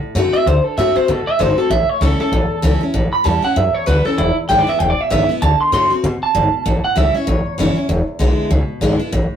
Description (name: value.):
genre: rockabilly.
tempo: 194 BPM.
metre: 4/4.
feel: swing 59% on 8ths.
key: A mixolydian.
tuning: A4 = 440 Hz.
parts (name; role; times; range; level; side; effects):
picked steel-string acoustic guitar; accompaniment; 0.0-9.4 s; E2 to F#4; -21 LUFS; left 2 dB; none.
upright bass; bass; 0.0-9.3 s; E1 to B2; -17 LUFS; equal; none.
electric guitar through a small old amp; melody; 0.3-8.1 s; E4 to C6; -17 LUFS; right 2 dB; none.
room: moderate studio reverb, RT60 0.6 s.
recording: rough rehearsal-room recording.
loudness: -14 LUFS.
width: side -9 dB against mid.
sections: 0.0-9.1 A section.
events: clean electric guitar solo 0.0-9.1.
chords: 0.0 D7; 1.7 A7; 4.2 E7; 5.4 D7; 6.7 A7; 7.9 E7.